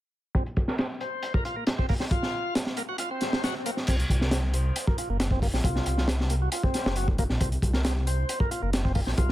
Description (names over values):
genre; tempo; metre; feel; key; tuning
breakbeat, breaks; 136 BPM; 4/4; straight; unclear; A4 = 440 Hz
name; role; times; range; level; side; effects
bright tonewheel organ; riff; 0.3-9.3 s; Bb3 to C5; -33 LUFS; equal; overdrive, slow rotary speaker, low-pass filter, ping-pong delay
crunchy breakbeat drum kit; drums; 0.3-9.3 s; crash cymbal, hi-hat, kick drum, snare drum; -26 LUFS; equal; low-pass filter on kick, low-pass filter on hats, low-pass filter on cymbals, low-pass filter on snare, low-pass filter on room
swell; sound effects; 3.1-3.9 s; none; -40 LUFS; left 2 dB; none
detuned saw bass; bass; 3.9-9.3 s; Gb1 to C2; -26 LUFS; equal; none
room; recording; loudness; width
small room ambience; none; -24 LUFS; side -15 dB against mid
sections
0.3-3.9 A section; 3.9-9.3 B section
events
filter sweep on drum 0.3-3.9; filter sweep on tonewheel organ 0.3-3.9, 3.9-9.3; kick drops out 3.0-3.9; swell 3.1-3.9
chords
0.3 Bbsus2; 3.9 Gbmaj7#11